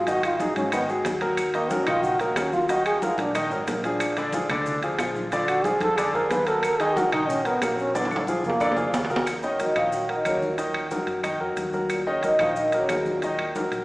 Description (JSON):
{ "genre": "Afro-Cuban jazz", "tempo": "182 BPM", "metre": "4/4", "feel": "straight", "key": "Eb minor", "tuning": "A4 = 440 Hz", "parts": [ { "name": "breathy trombone", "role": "second line", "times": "0.0-13.5 s", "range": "Ab2 to Cb5", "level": "-26 LUFS", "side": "right 1 dB", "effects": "none" }, { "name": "woody fretless electric bass", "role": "bass", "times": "0.0-13.8 s", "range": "Ab1 to Ab2", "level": "-39 LUFS", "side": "equal", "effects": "none" }, { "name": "clear concert grand piano", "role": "accompaniment", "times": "0.1-13.8 s", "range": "D3 to Eb5", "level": "-26 LUFS", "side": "equal", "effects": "none" }, { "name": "congas", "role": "percussion", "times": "0.1-13.8 s", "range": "none", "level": "-36 LUFS", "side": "left 1 dB", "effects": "none" }, { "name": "maracas", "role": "percussion", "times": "0.1-13.8 s", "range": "none", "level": "-45 LUFS", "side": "left 2 dB", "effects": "none" }, { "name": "timbales", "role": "percussion", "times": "0.1-13.8 s", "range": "none", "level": "-32 LUFS", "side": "right 1 dB", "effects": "none" }, { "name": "claves", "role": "percussion", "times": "0.2-13.6 s", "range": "none", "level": "-37 LUFS", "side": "equal", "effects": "none" }, { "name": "vibraphone with soft mallets", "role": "melody", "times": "9.3-13.5 s", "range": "Ab4 to Gb5", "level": "-26 LUFS", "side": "equal", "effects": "none" } ], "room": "wet recital hall reverb, RT60 1.8 s", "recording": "recorded in a church or concert hall, small speaker sound, faint mains hum", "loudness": "-22 LUFS", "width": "side -20 dB against mid", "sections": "0.0-9.3 A section; 9.3-13.8 B section", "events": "trombone solo 0.0-9.3; drum fill 8.0-9.3", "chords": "0.0 Ab5; 1.4 Ebm; 4.0 Bb7; 6.6 Ebm; 8.0 Bb7; 9.3 Ebm" }